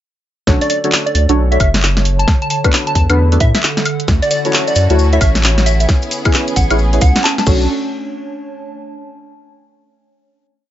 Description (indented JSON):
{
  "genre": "UK garage, two-step garage",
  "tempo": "133 BPM",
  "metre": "4/4",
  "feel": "swing 63% on 16ths",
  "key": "unclear",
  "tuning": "A4 = 440 Hz",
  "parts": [
    { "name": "deep mellow chord stab", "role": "stabs", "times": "0.5-7.6 s", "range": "D4 to C#5", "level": "-18 LUFS", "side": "left 1 dB", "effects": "chorus, phaser, digital delay" },
    { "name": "saturated sub bass", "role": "bass", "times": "0.5-7.7 s", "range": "F#1 to A2", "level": "-14 LUFS", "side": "equal", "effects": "tube saturation" },
    { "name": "electronic kick drum", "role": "drums", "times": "0.5-7.6 s", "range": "none", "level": "-14 LUFS", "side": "equal", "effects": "none" },
    { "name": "garage drum kit", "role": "drums", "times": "0.5-7.6 s", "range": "crash cymbal, handclaps, hi-hat, snare drum, woodblock", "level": "-17 LUFS", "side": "equal", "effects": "none" },
    { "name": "warbly tape-like pad", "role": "texture", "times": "1.0-9.5 s", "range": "D3 to A5", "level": "-25 LUFS", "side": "right 1 dB", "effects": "chorus, built-in reverb, phaser, sidechain pumping" },
    { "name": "plucky unison lead", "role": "melody", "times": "0.6-7.4 s", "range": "D5 to A5", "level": "-20 LUFS", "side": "right 1 dB", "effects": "digital delay" },
    { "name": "warm studio violin section", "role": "sustained chords", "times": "4.1-7.7 s", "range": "A3 to A4", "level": "-26 LUFS", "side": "equal", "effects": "sidechain pumping" },
    { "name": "cabasa", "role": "percussion", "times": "4.1-7.7 s", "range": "none", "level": "-27 LUFS", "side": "left 4 dB", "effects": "none" }
  ],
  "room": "digital ambience",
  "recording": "nothing above 7.7 kHz",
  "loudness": "-11 LUFS",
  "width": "side -12 dB against mid",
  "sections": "0.5-7.7 drop; 7.7-9.5 final note",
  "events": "drop 0.5-7.7",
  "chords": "0.5 Bm9; 2.3 E9sus4; 3.9 Dmaj7; 5.9 Amaj7; 7.5 Bm9; 7.7 Aadd11/D",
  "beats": "| 0.47 0.93 1.38 1.83 | 2.28 2.73 3.18 3.63 | 4.08 4.53 4.99 5.44 | 5.89 6.34 6.79 7.24 | 7.69 8.14 8.59 9.04"
}